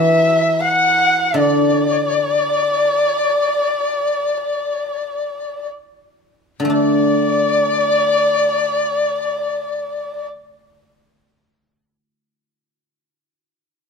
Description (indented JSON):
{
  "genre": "chinese traditional, Chinese chamber ensemble",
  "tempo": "free time",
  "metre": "none",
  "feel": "none",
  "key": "D gong mode",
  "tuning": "A4 = 436 Hz",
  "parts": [
    { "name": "dark erhu", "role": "melody", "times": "0.0-10.3 s", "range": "D5 to F#5", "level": "-20 LUFS", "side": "right 3 dB", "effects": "none" },
    { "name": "hammered dulcimer", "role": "second line", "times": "0.0-1.0 s", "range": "D4 to F#4", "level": "-41 LUFS", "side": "right 9 dB", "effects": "none" },
    { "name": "mellow dizi", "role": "second line", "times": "0.0-10.3 s", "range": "D5 to F#5", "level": "-18 LUFS", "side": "left 7 dB", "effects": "none" },
    { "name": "guzheng", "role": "accompaniment", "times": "0.0-13.2 s", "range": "D3 to D4", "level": "-19 LUFS", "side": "equal", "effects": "none" }
  ],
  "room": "light reverb",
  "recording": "close, detailed microphones",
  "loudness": "-15 LUFS",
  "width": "side -5 dB against mid",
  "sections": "0.0-6.7 A section; 6.7-11.0 B section",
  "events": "slowing down 0.0-6.7",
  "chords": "none",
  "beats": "free time"
}